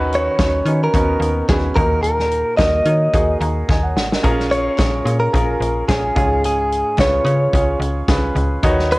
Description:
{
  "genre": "piano-driven pop",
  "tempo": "109 BPM",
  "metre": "4/4",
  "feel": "swing 56% on 16ths",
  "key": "unclear",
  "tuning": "A4 = 440 Hz",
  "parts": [
    { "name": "warm grand piano", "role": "accompaniment", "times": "0.0-9.0 s", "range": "Ab2 to Bb5", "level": "-21 LUFS", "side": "right 1 dB", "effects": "cassette tape, plate reverb" },
    { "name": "slap-like FM bass", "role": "bass", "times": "0.0-9.0 s", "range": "Ab1 to D#3", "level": "-21 LUFS", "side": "equal", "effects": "none" },
    { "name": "natural country drum kit", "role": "drums", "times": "0.1-9.0 s", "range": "hi-hat, kick drum, snare drum, toms", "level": "-20 LUFS", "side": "equal", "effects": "cassette tape" },
    { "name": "direct-recorded clean electric guitar", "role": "melody", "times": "0.2-9.0 s", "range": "Ab4 to Eb5", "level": "-18 LUFS", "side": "equal", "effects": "spring reverb, cassette tape" },
    { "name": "group handclap", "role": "percussion", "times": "4.8-8.2 s", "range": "none", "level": "-35 LUFS", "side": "left 4 dB", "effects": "none" }
  ],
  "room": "light reverb",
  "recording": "home recording on cassette",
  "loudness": "-15 LUFS",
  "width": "side -21 dB against mid",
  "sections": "0.0-9.0 A section",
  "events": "grand piano fill 3.1-4.2; drum fill 3.7-4.2",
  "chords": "0.0 Badd9/D#; 1.8 Ebm; 4.2 Bbm7; 6.2 Db"
}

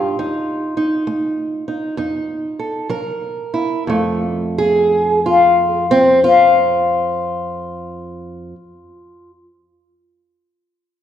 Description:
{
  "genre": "acoustic country blues, solo or duo",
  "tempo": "61-69 BPM",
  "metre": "4/4",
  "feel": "swing 66% on 8ths",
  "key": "F mixolydian",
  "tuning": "A4 = 440 Hz",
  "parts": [
    { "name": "fingerpicked old ladder-braced acoustic guitar", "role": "solo", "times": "0.0-9.3 s", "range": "F2 to Bb4", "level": "-15 LUFS", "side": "left 1 dB", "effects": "none" }
  ],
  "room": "wet recital hall reverb, RT60 1.7 s",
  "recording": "recorded in a church or concert hall",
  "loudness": "-14 LUFS",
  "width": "side -10 dB against mid",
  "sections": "0.0-3.9 A section; 3.9-7.8 B section",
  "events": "slowing down 0.0-3.9; stop 0.2-2.9",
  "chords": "0.2 F7; 2.9 Gb7; 3.9 F"
}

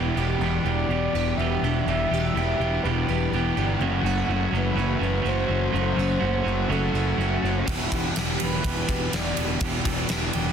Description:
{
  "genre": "rock, shoegaze and dream pop",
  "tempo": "124 BPM",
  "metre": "4/4",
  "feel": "straight",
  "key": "E minor",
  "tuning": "A4 = 440 Hz",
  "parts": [
    { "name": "picked plugged-in twelve-string acoustic guitar", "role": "arpeggios", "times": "0.0-10.5 s", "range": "E3 to G4", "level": "-34 LUFS", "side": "right 12 dB", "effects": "ensemble chorus, slapback echo" },
    { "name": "fuzz guitar", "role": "riff", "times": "0.0-10.5 s", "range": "E2 to F#3", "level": "-29 LUFS", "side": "left 12 dB", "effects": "distortion, wide subtle chorus" },
    { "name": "overdriven electric guitar", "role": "riff", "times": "0.0-10.5 s", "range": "E2 to G4", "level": "-28 LUFS", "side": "right 12 dB", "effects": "reverse reverb" },
    { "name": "fuzz picked electric bass", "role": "bass", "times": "0.0-10.5 s", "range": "E1 to G1", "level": "-27 LUFS", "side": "equal", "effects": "overdrive" },
    { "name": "mellow horn-like synth lead", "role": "melody", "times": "0.7-10.5 s", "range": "A4 to F#5", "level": "-30 LUFS", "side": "left 1 dB", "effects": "chorus, slapback echo" },
    { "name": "crunchy overdriven guitar", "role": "riff", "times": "7.7-10.5 s", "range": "E2 to E3", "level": "-34 LUFS", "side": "equal", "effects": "none" },
    { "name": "huge arena drum kit", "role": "drums", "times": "7.7-10.4 s", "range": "kick drum, ride cymbal, snare drum", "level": "-26 LUFS", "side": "equal", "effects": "none" }
  ],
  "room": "light reverb",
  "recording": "dense, heavily limited modern master",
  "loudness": "-22 LUFS",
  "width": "side -7 dB against mid",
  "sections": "0.0-10.5 A section",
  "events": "none",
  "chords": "0.0 Em7; 3.8 F#m7b5; 7.7 Em7"
}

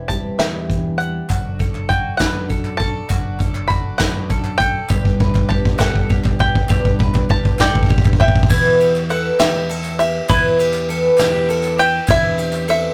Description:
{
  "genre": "indie folk with a building arrangement",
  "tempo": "67 BPM (dotted quarters)",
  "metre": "6/8",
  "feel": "straight",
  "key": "unclear",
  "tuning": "A4 = 442 Hz",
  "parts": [
    { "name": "bluegrass banjo", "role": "melody", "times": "0.0-12.9 s", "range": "B4 to B5", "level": "-22 LUFS", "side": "equal", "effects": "none" },
    { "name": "fingerpicked steel-string acoustic guitar", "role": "accompaniment", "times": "0.0-1.3 s", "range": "E3 to G4", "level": "-30 LUFS", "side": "equal", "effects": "none" },
    { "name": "picked twelve-string acoustic guitar", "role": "accompaniment", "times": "0.0-12.9 s", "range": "G2 to G4", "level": "-24 LUFS", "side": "equal", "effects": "none" },
    { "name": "fingered electric bass", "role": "bass", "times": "0.0-12.9 s", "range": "E1 to G2", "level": "-28 LUFS", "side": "equal", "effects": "none" },
    { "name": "soft brush drum kit", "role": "drums", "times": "0.1-12.8 s", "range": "crash cymbal, hi-hat, kick drum, ride cymbal, snare drum", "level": "-20 LUFS", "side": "equal", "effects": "none" },
    { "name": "warm chamber string section", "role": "sustained chords", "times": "1.3-12.9 s", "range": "G4 to E6", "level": "-38 LUFS", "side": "equal", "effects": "none" },
    { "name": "mandolin", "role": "arpeggios", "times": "1.3-12.9 s", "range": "E4 to B4", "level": "-28 LUFS", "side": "equal", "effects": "none" },
    { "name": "group handclap", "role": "percussion", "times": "1.3-12.7 s", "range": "none", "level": "-37 LUFS", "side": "equal", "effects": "none" },
    { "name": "tambourine", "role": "percussion", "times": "1.3-12.7 s", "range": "none", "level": "-44 LUFS", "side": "equal", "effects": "none" }
  ],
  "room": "wet booth ambience, RT60 0.2 s",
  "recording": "rough rehearsal-room recording, tube saturation",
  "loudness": "-17 LUFS",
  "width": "mono",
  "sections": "0.0-8.5 A section; 8.5-12.9 B section",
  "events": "build-up 0.0-8.5; drum fill 0.0-8.5",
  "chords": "0.0 Cadd9/E; 1.3 D/F#; 4.9 G; 8.5 Em; 12.1 Cadd9/E"
}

